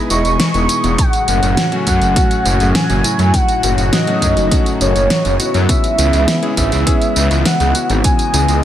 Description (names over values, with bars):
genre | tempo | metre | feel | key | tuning
synthwave | 102 BPM | 4/4 | straight | unclear | A4 = 440 Hz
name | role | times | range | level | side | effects
phased analog pad | sustained chords | 0.0-8.6 s | A2 to D#5 | -21 LUFS | equal | phaser, chorus, sidechain pumping, shimmer reverb
warm electric grand piano | stabs | 0.0-8.6 s | F#3 to B4 | -22 LUFS | left 2 dB | shimmer reverb
warm velvety synth lead | melody | 0.1-8.6 s | C#5 to C#6 | -18 LUFS | equal | chorus, digital delay, shimmer reverb
wide detuned saw bass | bass | 0.1-8.6 s | E1 to F#2 | -16 LUFS | equal | chorus
pop drum kit | drums | 0.1-8.6 s | hi-hat, snare drum, tambourine | -19 LUFS | equal | small room ambience, gated reverb
electronic kick drum | drums | 1.0-8.2 s | none | -16 LUFS | equal | small room ambience
room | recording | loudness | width
light reverb | none | -12 LUFS | side -11 dB against mid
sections
0.0-8.6 A section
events
none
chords
0.0 Emaj7; 1.0 F#m; 5.7 C#m7